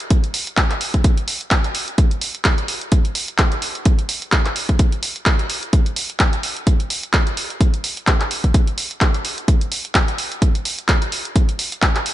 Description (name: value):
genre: house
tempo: 128 BPM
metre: 4/4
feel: swing 56% on 16ths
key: none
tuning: none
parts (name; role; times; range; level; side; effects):
- punchy analog drum machine; drums; 0.0-12.1 s; handclaps, hi-hat; -21 LUFS; equal; none
- electronic kick drum; drums; 0.1-11.9 s; none; -16 LUFS; equal; none
room: little or no reverb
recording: nothing above 11.0 kHz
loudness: -16 LUFS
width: side -14 dB against mid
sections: 0.0-12.1 A section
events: none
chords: none